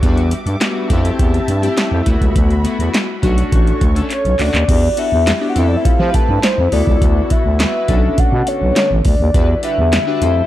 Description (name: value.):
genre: early-eighties boogie funk.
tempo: 103 BPM.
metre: 4/4.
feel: straight.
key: E dorian.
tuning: A4 = 440 Hz.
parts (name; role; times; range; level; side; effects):
chorused polysynth; accompaniment; 0.0-10.5 s; G3 to C5; -21 LUFS; left 3 dB; none.
warm studio string section; sustained chords; 0.0-10.5 s; D3 to D6; -28 LUFS; right 1 dB; none.
growling FM bass; bass; 0.0-10.4 s; A1 to F3; -16 LUFS; equal; none.
electro analog drum machine; drums; 0.0-10.4 s; crash cymbal, handclaps, hi-hat, kick drum, snare drum; -16 LUFS; equal; none.
soft octave-layered synth lead; melody; 4.1-10.5 s; C5 to A5; -18 LUFS; left 1 dB; chorus, phaser, slapback echo.
room: digital ambience.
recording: dark, warm production.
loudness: -12 LUFS.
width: side -14 dB against mid.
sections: 0.0-4.7 A section; 4.7-10.5 B section.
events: drum fill 4.1-4.7.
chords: 0.0 Em7; 0.9 Fmaj7; 2.1 D69; 3.2 Bm9; 4.7 Em7; 5.6 Fmaj7; 6.7 D69; 7.9 Bm9; 9.3 Em7.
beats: | 0.03 0.61 1.19 1.77 | 2.35 2.94 3.52 4.10 | 4.68 5.27 5.85 6.43 | 7.01 7.60 8.18 8.76 | 9.35 9.93.